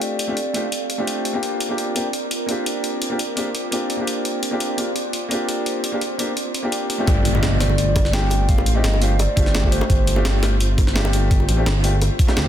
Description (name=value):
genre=liquid drum and bass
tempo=170 BPM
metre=4/4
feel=straight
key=G minor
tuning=A4 = 442 Hz
part: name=hollow clarinet-like synth lead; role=melody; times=0.0-1.2, 7.1-10.3 s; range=C5 to G5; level=-27 LUFS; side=right 1 dB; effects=chorus, digital delay
part: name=warm grand piano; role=accompaniment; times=0.0-12.5 s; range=A3 to G4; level=-24 LUFS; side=left 1 dB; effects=tape echo
part: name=airy breathy pad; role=sustained chords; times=0.0-12.5 s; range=A3 to F5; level=-30 LUFS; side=right 2 dB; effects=chorus, sidechain pumping
part: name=breakbeat sampler-style drum kit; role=drums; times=0.0-12.4 s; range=hi-hat, snare drum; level=-26 LUFS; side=equal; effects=none
part: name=smooth gliding synth bass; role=bass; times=7.1-12.5 s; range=G1 to D2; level=-19 LUFS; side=equal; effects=none
part: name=electronic kick drum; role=drums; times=7.1-12.5 s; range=none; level=-18 LUFS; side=equal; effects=none
part: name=bongos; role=percussion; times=7.1-12.4 s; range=none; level=-31 LUFS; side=equal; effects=none
part: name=impact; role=sound effects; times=7.1-8.5 s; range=none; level=-24 LUFS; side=equal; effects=none
room=light reverb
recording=dense, heavily limited modern master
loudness=-18 LUFS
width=side -11 dB against mid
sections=0.0-7.1 A section; 7.1-12.5 B section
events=filter sweep on analog synth pad 0.0-7.1; drop 7.1-12.5; impact 7.1-8.5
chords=0.0 G9sus4